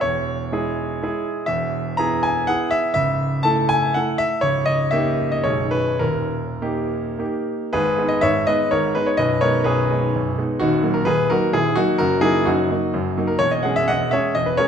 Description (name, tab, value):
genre	classical, romantic triple-time dance for piano with dotted rhythms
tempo	96-139 BPM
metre	3/4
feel	rubato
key	G# minor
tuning	A4 = 440 Hz
part	clear concert grand piano	solo	0.0-14.7 s	B0 to A#5	-18 LUFS	equal	none
room	wet recital hall reverb, RT60 1.5 s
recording	none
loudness	-18 LUFS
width	side -7 dB against mid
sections	0.0-7.7 A section; 7.7-14.7 B section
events	none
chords	0.0 C#m/E; 1.5 E; 3.0 A/C#; 4.4 D#7/C#; 5.5 G#m/B; 6.0 D#; 7.7 G#m; 9.2 G#m/B; 10.6 D#m; 12.0 D#m/F#; 13.4 C#m/E